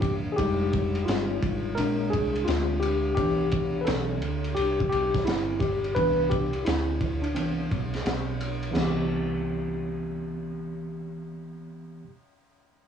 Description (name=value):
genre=hip hop, jazz-hop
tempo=86 BPM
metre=4/4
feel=swing 64% on 16ths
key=C major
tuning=A4 = 440 Hz
part: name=tine electric piano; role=accompaniment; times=0.0-12.1 s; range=E3 to B4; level=-27 LUFS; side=left 1 dB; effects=overdrive, fast stereo tremolo, cassette tape
part: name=woody fretless electric bass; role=bass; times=0.0-12.0 s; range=F1 to G2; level=-32 LUFS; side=right 1 dB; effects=none
part: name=crunchy breakbeat drum kit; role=drums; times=0.0-9.0 s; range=crash cymbal, hi-hat, kick drum, ride cymbal, snare drum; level=-30 LUFS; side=equal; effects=cassette tape
room=moderate booth ambience, RT60 0.3 s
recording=home recording on cassette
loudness=-24 LUFS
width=side -8 dB against mid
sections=0.0-8.8 A section; 8.8-11.5 B section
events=tine electric piano solo 0.0-8.8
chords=0.4 Fm7; 1.8 Bb9; 3.2 Cmaj7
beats=| 0.39 1.08 1.78 2.48 | 3.17 3.87 4.57 5.27 | 5.97 6.66 7.36 8.06 | 8.76 9.45 10.15 10.85